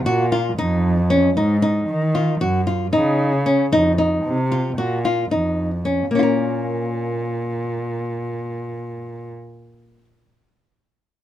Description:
contemporary instrumental, contemporary; 227 BPM (eighths); 9/8; straight; Bb minor; A4 = 442 Hz
nylon-string guitar; arpeggios; 0.1-10.0 s; Bb3 to Bb4; -20 LUFS; left 1 dB
muted cello; bass; 0.1-9.3 s; F2 to Eb3; -21 LUFS; right 1 dB
light reverb; minimal, uncompressed stereo recording; -18 LUFS; side -12 dB against mid
0.0-6.1 A section; 6.1-8.5 B section
0.1 Bbm; 1.4 Ab5; 2.4 Gb5; 3.7 F5; 4.8 Bbm

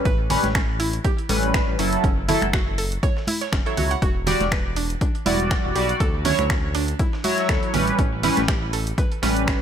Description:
deep house; 121 BPM; 4/4; swing 55% on 16ths; A4 = 440 Hz
chorused polysynth; stabs; 0.0-9.6 s; F#3 to D5; -24 LUFS; equal; sidechain pumping, digital delay
mallet-like synth pluck; arpeggios; 0.1-9.5 s; C#4 to F#5; -29 LUFS; right 4 dB; chorus, sidechain pumping, digital delay
smooth synth bass; bass; 0.1-9.5 s; E1 to D2; -26 LUFS; equal; sidechain pumping
dusty soul sampler-style drum kit; drums; 0.1-9.6 s; hi-hat, snare drum; -37 LUFS; right 1 dB
electronic kick drum; drums; 0.1-9.6 s; -22 LUFS; equal
punchy analog drum machine; drums; 0.1-9.6 s; finger snaps, hi-hat; -28 LUFS; equal; overdrive
congas; percussion; 0.3-9.3 s; -30 LUFS; right 2 dB
light reverb, digital ambience; -19 LUFS; side -9 dB against mid
0.0-9.6 A section
0.0 A9; 1.8 F#m7; 4.0 Em9; 6.0 Dmaj9; 7.7 A9

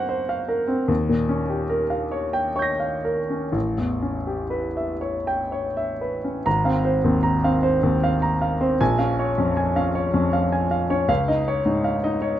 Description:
classical, impressionist solo piano; 60-83 BPM; 3/4; rubato; Ab major; A4 = 440 Hz
warm concert grand piano; solo; 0.0-12.4 s; Ab1 to Bb6; -20 LUFS; equal
moderate large studio reverb, RT60 1.4 s; nothing above 7.8 kHz; -20 LUFS; side -12 dB against mid
0.0-6.5 A section; 6.5-12.4 B section
0.0 Gbmaj7#11; 0.9 Eb9; 3.5 A9; 6.5 Ab69; 8.8 Bbm7; 11.1 Dbadd9

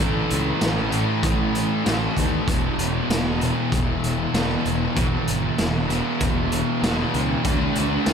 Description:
rock, shoegaze and dream pop; 97 BPM; 4/4; straight; A4 = 439 Hz
fuzz guitar; riff; 0.0-8.1 s; E2 to D4; -22 LUFS; equal; distortion, wide subtle chorus
fuzz fingered electric bass; bass; 0.0-8.1 s; E1 to D#2; -27 LUFS; equal; overdrive
raw garage drum kit; drums; 0.3-8.1 s; hi-hat, kick drum, snare drum; -26 LUFS; equal
wet huge ambient reverb, RT60 7.2 s; dreamy mix soaked in reverb; -20 LUFS; side -7 dB against mid
0.0-8.1 A section
0.0 A5; 2.5 E5; 7.4 D5

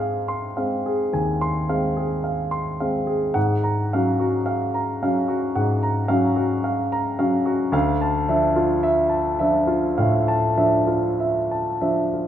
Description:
classical, impressionist solo piano; 54 BPM; 4/4; rubato; A4 = 440 Hz
warm grand piano; solo; 0.0-12.3 s; D2 to C6; -19 LUFS; equal
moderate recital hall reverb, RT60 1.4 s; minimal, uncompressed stereo recording; -19 LUFS; side -10 dB against mid
0.0-12.3 A section
0.0 Ab6; 3.4 Gbmaj7/Ab; 7.7 Dmadd9

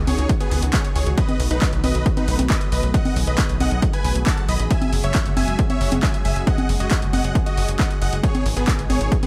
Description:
uplifting trance; 136 BPM; 4/4; straight; A4 = 441 Hz
lush unison pad; sustained chords; 0.0-9.3 s; B2 to G#4; -32 LUFS; equal; chorus, sidechain pumping
tight sequencer bass; bass; 0.0-9.1 s; F#1 to C#2; -24 LUFS; equal; sidechain pumping
big supersaw lead; melody; 0.1-9.3 s; B3 to B5; -30 LUFS; equal; vintage 12-bit sampler grit, sidechain pumping, digital delay
punchy analog drum machine; drums; 0.1-9.3 s; congas, handclaps, hi-hat; -28 LUFS; equal; overdrive
electronic kick drum; drums; 0.3-9.2 s; -23 LUFS; equal; overdrive
little or no reverb; -20 LUFS; mono
0.0-9.3 A section
0.0 C#sus2; 1.2 B7; 4.7 F#sus2; 8.2 G#m

